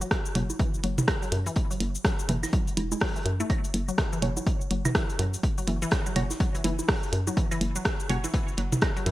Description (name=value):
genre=minimal techno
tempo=124 BPM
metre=4/4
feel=swing 60% on 16ths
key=unclear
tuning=A4 = 443 Hz
part: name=resonant blip pluck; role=riff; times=0.0-9.1 s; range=E3 to A3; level=-35 LUFS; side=left 1 dB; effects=chorus, sidechain pumping, digital delay
part: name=hollow knocking FM bass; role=bass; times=0.0-9.1 s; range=E1 to F#2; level=-28 LUFS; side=equal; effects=sidechain pumping
part: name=minimal click drum kit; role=drums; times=0.0-9.1 s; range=hi-hat, rim click, shaker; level=-31 LUFS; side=equal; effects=small room ambience, gated reverb
part: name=crunchy breakbeat drum kit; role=drums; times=0.1-9.1 s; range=hi-hat, snare drum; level=-40 LUFS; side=equal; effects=high-pass filter on hats, small room ambience, high-pass filter on snare, high-pass filter on room, gated reverb
part: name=electronic kick drum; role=drums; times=0.1-8.9 s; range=none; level=-27 LUFS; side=equal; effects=overdrive, small room ambience
part: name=electronic toms, bongos and claves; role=percussion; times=0.4-8.9 s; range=none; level=-30 LUFS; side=right 2 dB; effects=overdrive, small room ambience, gated reverb
part: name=filtered dub chord stab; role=stabs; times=4.2-8.2 s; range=C#4 to C#5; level=-37 LUFS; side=right 5 dB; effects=phaser, digital delay
room=little or no reverb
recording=bright 1980s-style digital production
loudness=-24 LUFS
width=side -16 dB against mid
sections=0.0-9.1 A section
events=none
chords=0.0 F#5